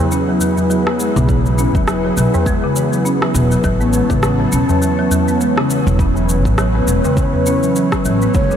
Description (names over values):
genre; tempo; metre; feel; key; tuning
organic downtempo; 102 BPM; 4/4; swing 57% on 16ths; unclear; A4 = 435 Hz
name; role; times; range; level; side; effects
warm analog pad; sustained chords; 0.0-8.6 s; E3 to A5; -18 LUFS; left 1 dB; lush chorus, sidechain pumping
folk marimba with soft mallets; arpeggios; 0.0-8.6 s; C#3 to C#4; -18 LUFS; right 1 dB; low-pass filter, ping-pong delay
electronic shaker and rim click; drums; 0.1-8.6 s; none; -24 LUFS; equal; studio reverb
tabla; percussion; 0.4-8.5 s; none; -23 LUFS; equal; none
upright bass; bass; 1.2-8.6 s; E1 to B1; -17 LUFS; equal; sidechain pumping
electronic kick drum; drums; 1.3-8.5 s; none; -19 LUFS; equal; studio reverb
breathy mellow ney; melody; 8.3-8.6 s; C#5; -19 LUFS; right 4 dB; none
room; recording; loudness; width
moderate huge ambient reverb, RT60 7.5 s; dreamy mix soaked in reverb; -13 LUFS; side -9 dB against mid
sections
0.0-8.6 A section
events
none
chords
0.0 Eadd9; 3.6 Aadd9